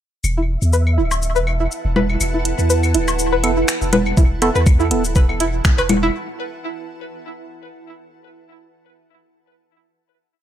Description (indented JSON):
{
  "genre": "minimal techno",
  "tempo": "122 BPM",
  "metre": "4/4",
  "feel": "swing 55% on 16ths",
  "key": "unclear",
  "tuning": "A4 = 440 Hz",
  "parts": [
    { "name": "punchy sub bass", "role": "bass", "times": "0.2-6.1 s", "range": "D1 to E2", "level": "-19 LUFS", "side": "equal", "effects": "sidechain pumping" },
    { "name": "garage drum kit", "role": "drums", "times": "0.2-6.0 s", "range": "cabasa, finger snaps, hi-hat", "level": "-23 LUFS", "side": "left 1 dB", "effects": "small room ambience" },
    { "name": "claves, woodblock and congas", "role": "percussion", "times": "0.2-6.0 s", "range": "none", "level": "-22 LUFS", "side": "left 2 dB", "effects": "small room ambience, tape echo" },
    { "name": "flickering grainy texture", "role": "texture", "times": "0.6-2.2 s", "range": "E5", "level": "-32 LUFS", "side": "right 1 dB", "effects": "built-in reverb, sidechain pumping" },
    { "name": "granular cloud pad", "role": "texture", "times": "1.5-6.1 s", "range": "E4 to A5", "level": "-26 LUFS", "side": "right 3 dB", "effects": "built-in reverb, sidechain pumping" },
    { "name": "string-like resonator pluck", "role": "riff", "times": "0.4-6.1 s", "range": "E4 to B4", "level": "-22 LUFS", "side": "equal", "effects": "chorus, sidechain pumping, tape echo" },
    { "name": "percussive organ stab", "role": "stabs", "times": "3.4-5.0 s", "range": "B3 to A4", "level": "-23 LUFS", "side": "right 3 dB", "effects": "chorus, dub echo" },
    { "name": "electronic kick drum", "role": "drums", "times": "4.2-5.8 s", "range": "none", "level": "-13 LUFS", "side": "equal", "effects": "small room ambience" }
  ],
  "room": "light reverb",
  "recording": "echo-heavy mix",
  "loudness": "-15 LUFS",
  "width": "side -10 dB against mid",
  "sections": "0.2-2.2 intro; 2.2-6.1 build",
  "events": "filter sweep on synth pluck 0.2-2.2, 2.2-6.1; build-up 2.2-6.1",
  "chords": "0.2 Esus4"
}